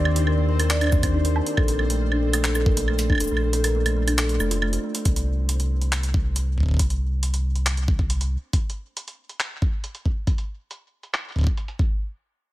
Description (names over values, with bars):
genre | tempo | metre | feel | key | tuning
IDM | 138 BPM | 4/4 | straight | unclear | A4 = 440 Hz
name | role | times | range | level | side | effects
warbly tape-like pad | sustained chords | 0.0-5.0 s | Eb3 to D5 | -32 LUFS | left 1 dB | chorus, built-in reverb
warm sub bass | bass | 0.0-8.4 s | F1 to Eb2 | -23 LUFS | equal | none
bubbling stepped-filter texture | texture | 0.0-5.1 s | C4 to C5 | -37 LUFS | left 1 dB | chorus, built-in reverb
kalimba | arpeggios | 0.1-5.0 s | A3 to D5 | -26 LUFS | equal | dub echo
jungle sampler-style drum kit | drums | 0.1-11.8 s | cabasa, handclaps, hi-hat, woodblock | -27 LUFS | right 2 dB | low-pass filter on perc, small room ambience, low-pass filter on hats, low-pass filter on snare
electronic kick drum | drums | 0.9-11.9 s | none | -22 LUFS | equal | small room ambience
room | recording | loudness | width
digital ambience | none | -20 LUFS | side -16 dB against mid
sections
0.0-5.1 A section; 5.1-12.0 B section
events
kick drops out 3.3-5.1; filter sweep on sub bass 5.1-8.5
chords
0.0 Ebmaj7; 1.6 Bbmaj7; 5.1 C5; 8.5 N.C.